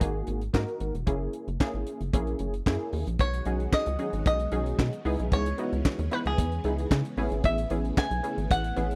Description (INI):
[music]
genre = early-eighties boogie funk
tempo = 113 BPM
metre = 4/4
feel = straight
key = unclear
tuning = A4 = 440 Hz
[part]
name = funky polysynth comp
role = accompaniment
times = 0.0-9.0 s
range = A#3 to B4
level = -35 LUFS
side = equal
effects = chorus
[part]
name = rubbery square bass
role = bass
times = 0.0-9.0 s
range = E1 to C#3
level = -32 LUFS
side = equal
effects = none
[part]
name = tight funk drum kit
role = drums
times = 0.0-9.0 s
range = handclaps, hi-hat, kick drum, snare drum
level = -28 LUFS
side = equal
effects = none
[part]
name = bluegrass banjo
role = melody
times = 3.2-9.0 s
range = G#4 to G#5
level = -34 LUFS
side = equal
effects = none
[part]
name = string machine, violins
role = sustained chords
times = 3.2-9.0 s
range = C#3 to F#4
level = -42 LUFS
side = equal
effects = ensemble chorus
[sound]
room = studio reverb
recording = dry, close 1970s-style studio recording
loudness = -28 LUFS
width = mono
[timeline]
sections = 0.0-3.2 A section; 3.2-9.0 B section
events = none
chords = 0.0 Emaj9#11/G# (rootless); 1.1 F#7; 3.2 B6; 5.1 C#m7; 7.2 Amaj9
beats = 0.01 0.54 | 1.07 1.60 2.13 2.66 | 3.19 3.73 4.26 4.79 | 5.32 5.85 6.38 6.91 | 7.44 7.97 8.50